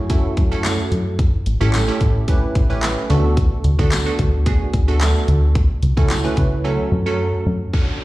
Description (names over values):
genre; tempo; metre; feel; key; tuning
dance-pop; 110 BPM; 4/4; straight; F# minor; A4 = 440 Hz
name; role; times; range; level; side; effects
glassy wavetable pluck; accompaniment; 0.0-8.0 s; F#3 to B4; -22 LUFS; right 2 dB; chorus, sidechain pumping
plucky analog bass; bass; 0.0-7.7 s; A1 to F#2; -18 LUFS; equal; sidechain pumping
pop drum kit; drums; 0.1-7.9 s; handclaps, hi-hat, kick drum, snare drum; -19 LUFS; equal; none
tambourine; percussion; 0.6-6.2 s; none; -32 LUFS; left 7 dB; none
downlifter; sound effects; 7.7-8.0 s; none; -28 LUFS; right 1 dB; none
room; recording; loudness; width
little or no reverb; played on a big sound system in a bare room, large studio reverb; -15 LUFS; side -18 dB against mid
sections
0.0-7.7 A section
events
break 6.6-7.7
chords
0.0 F#m7; 1.2 A7; 3.1 D6; 5.6 A6/C#; 6.6 F#m